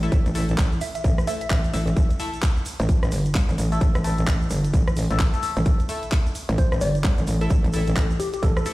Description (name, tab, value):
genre	bass house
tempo	130 BPM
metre	4/4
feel	swing 60% on 16ths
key	unclear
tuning	A4 = 440 Hz
part	band-passed chord stab	stabs	0.0-8.7 s	A3 to E5	-32 LUFS	left 3 dB	phaser, lush chorus, sidechain pumping, digital delay
part	metallic wobble bass	bass	0.0-8.6 s	G1 to C2	-23 LUFS	equal	distortion, chorus, tube saturation, sidechain pumping
part	house drum kit	drums	0.0-8.7 s	handclaps, hi-hat, rim click	-32 LUFS	equal	none
part	tube shaker	percussion	0.0-8.7 s	none	-40 LUFS	right 3 dB	none
part	electronic kick drum	drums	0.1-8.5 s	none	-20 LUFS	equal	none
part	glassy wavetable pluck	melody	0.8-1.5, 6.6-8.6 s	G4 to E5	-30 LUFS	equal	chorus, digital delay
room	digital ambience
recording	played on a big sound system in a bare room, stone room reverb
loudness	-20 LUFS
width	side -18 dB against mid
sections	0.0-8.7 A section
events	none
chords	0.0 A5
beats	| 0.12 0.58 1.04 1.50 | 1.97 2.43 2.89 3.35 | 3.81 4.27 4.74 5.20 | 5.66 6.12 6.58 7.04 | 7.50 7.97 8.43